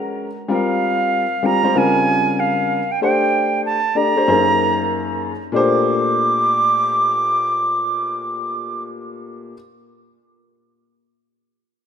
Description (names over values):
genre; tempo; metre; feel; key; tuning
hip hop; 95 BPM; 4/4; swing 64% on 16ths; unclear; A4 = 445 Hz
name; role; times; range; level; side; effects
warm upright piano; accompaniment; 0.0-9.5 s; Gb2 to D5; -20 LUFS; left 3 dB; none
reedy silver concert flute; melody; 0.5-8.8 s; F5 to D6; -18 LUFS; right 3 dB; none
room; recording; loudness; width
moderate lush hall reverb, RT60 2.6 s; rough home demo mix; -15 LUFS; side -8 dB against mid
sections
0.0-5.5 A section; 5.5-8.1 B section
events
none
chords
0.5 Gm7; 1.8 Dbmaj7; 3.0 D5; 4.3 Gbadd9; 5.5 Bbmaj9